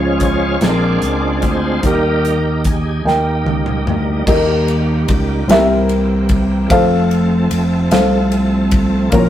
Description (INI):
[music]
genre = slow gospel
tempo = 49 BPM (dotted quarters)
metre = 6/8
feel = straight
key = unclear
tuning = A4 = 439 Hz
[part]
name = warm upright piano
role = accompaniment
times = 0.0-9.3 s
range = Bb2 to Db5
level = -22 LUFS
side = left 3 dB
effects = none
[part]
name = bright tonewheel organ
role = sustained chords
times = 0.0-9.3 s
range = Eb3 to D5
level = -20 LUFS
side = right 2 dB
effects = fast rotary speaker, overdrive, chorus vibrato
[part]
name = fingered electric bass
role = bass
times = 0.0-9.3 s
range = F1 to Eb2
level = -16 LUFS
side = equal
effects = none
[part]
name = modern studio drum kit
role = drums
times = 0.2-9.3 s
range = crash cymbal, hi-hat, kick drum, ride cymbal, snare drum, toms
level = -19 LUFS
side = equal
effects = none
[part]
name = felt-muted upright piano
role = melody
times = 3.1-9.3 s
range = F4 to G5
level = -18 LUFS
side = left 1 dB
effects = none
[sound]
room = moderate stone room reverb, RT60 1.0 s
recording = rough rehearsal-room recording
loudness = -12 LUFS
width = side -11 dB against mid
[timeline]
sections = 0.0-4.3 A section; 4.3-9.3 B section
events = tonewheel organ solo 0.0-4.3; drum fill 3.1-4.3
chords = 0.0 Db; 0.6 Bb9; 1.8 Eb; 5.5 C7; 6.7 F